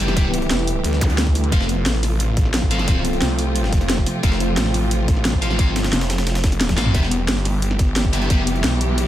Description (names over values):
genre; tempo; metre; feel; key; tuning
dark technical drum and bass; 177 BPM; 4/4; straight; E phrygian; A4 = 440 Hz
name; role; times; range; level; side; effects
warm studio string section; sustained chords; 0.0-9.1 s; C3 to G4; -26 LUFS; right 1 dB; sidechain pumping
thick fuzz guitar; stabs; 0.0-8.4 s; B3 to F5; -26 LUFS; left 2 dB; distortion, dub echo
snarling distorted saw bass; bass; 0.0-9.1 s; E1 to D2; -21 LUFS; equal; distortion, overdrive
breakbeat sampler-style drum kit; drums; 0.0-9.1 s; hi-hat, snare drum; -30 LUFS; equal; high-pass filter on hats, studio reverb, high-pass filter on snare
drum and bass drum kit; drums; 0.0-9.0 s; hi-hat, snare drum, toms; -23 LUFS; equal; studio reverb
deep dark ambient pad; texture; 0.0-9.1 s; E4 to G5; -30 LUFS; equal; chorus, built-in reverb, sidechain pumping
electronic kick drum; drums; 0.2-8.4 s; none; -19 LUFS; equal; studio reverb
zap; sound effects; 1.0-1.1 s; none; -29 LUFS; equal; none
room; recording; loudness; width
little or no reverb; none; -16 LUFS; side -12 dB against mid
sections
0.0-6.9 A section; 6.9-9.1 A section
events
drop 0.0-6.9, 6.9-9.1; drum fill 6.7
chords
0.0 Em; 1.5 F; 6.9 Em